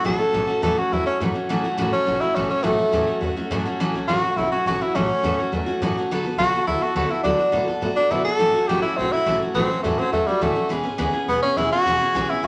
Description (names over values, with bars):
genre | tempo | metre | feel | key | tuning
rockabilly | 208 BPM | 4/4 | straight | A major | A4 = 438 Hz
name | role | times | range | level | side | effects
bright tenor saxophone | melody | 0.0-12.5 s | G3 to A4 | -23 LUFS | equal | none
picked steel-string acoustic guitar | accompaniment | 0.0-12.5 s | A2 to A4 | -26 LUFS | equal | none
upright bass | bass | 0.0-12.5 s | E1 to B2 | -34 LUFS | equal | none
room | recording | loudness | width
wet large studio reverb, RT60 1.2 s | none | -22 LUFS | mono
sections
0.0-1.5 A section; 1.5-12.5 A section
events
none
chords
0.0 A6; 6.1 D6; 8.4 A6; 10.7 E6